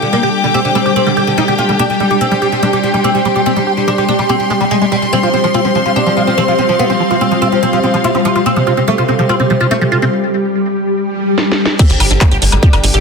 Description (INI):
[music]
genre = psychedelic trance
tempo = 144 BPM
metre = 4/4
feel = straight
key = unclear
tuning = A4 = 443 Hz
[part]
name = oud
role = melody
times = 0.0-13.0 s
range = C3 to F4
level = -15 LUFS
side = right 1 dB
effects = phaser, sidechain pumping, ping-pong delay
[part]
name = swarming drone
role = sustained chords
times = 0.0-13.0 s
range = G3 to G4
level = -17 LUFS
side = equal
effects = built-in reverb, sidechain pumping
[part]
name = rich studio string section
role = texture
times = 0.0-13.0 s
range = C4 to D6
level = -18 LUFS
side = left 2 dB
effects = sidechain pumping
[part]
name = liquid acid bass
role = riff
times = 0.1-13.0 s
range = F3 to G4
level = -17 LUFS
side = equal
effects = phaser, auto-pan, sidechain pumping, ping-pong delay
[part]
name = swell and sub drop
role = sound effects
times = 11.1-13.0 s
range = none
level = -19 LUFS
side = left 2 dB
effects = none
[part]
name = techno drum kit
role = drums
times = 11.4-13.0 s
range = crash cymbal, handclaps, hi-hat, snare drum, woodblock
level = -15 LUFS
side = left 1 dB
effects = low-pass filter on hats, low-pass filter on snare, low-pass filter on perc, low-pass filter on cymbals, low-pass filter on room
[part]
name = electronic kick drum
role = drums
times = 11.8-12.7 s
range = none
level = -9 LUFS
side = equal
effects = none
[part]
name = tight sequencer bass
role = bass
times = 11.9-13.0 s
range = G1 to Ab1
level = -13 LUFS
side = equal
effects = none
[sound]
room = moderate plate reverb, RT60 1.8 s, digital ambience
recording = dense, heavily limited modern master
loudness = -10 LUFS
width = side -4 dB against mid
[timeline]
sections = 0.0-11.8 A section; 11.8-13.0 B section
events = filter sweep on acid bass 0.0-11.8; filter sweep on synth drone 0.0-11.8; break 10.1-11.8; swell 11.1-11.8; drum fill 11.4-11.8; drop 11.8-13.0; impact 11.8-13.0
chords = 0.0 G5; 5.1 F5; 11.8 G5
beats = | 0.13 0.54 0.96 1.38 | 1.79 2.21 2.63 3.04 | 3.46 3.88 4.29 4.71 | 5.13 5.54 5.96 6.38 | 6.79 7.21 7.63 8.04 | 8.46 8.88 9.29 9.71 | 10.13 10.54 10.96 11.38 | 11.79 12.21 12.63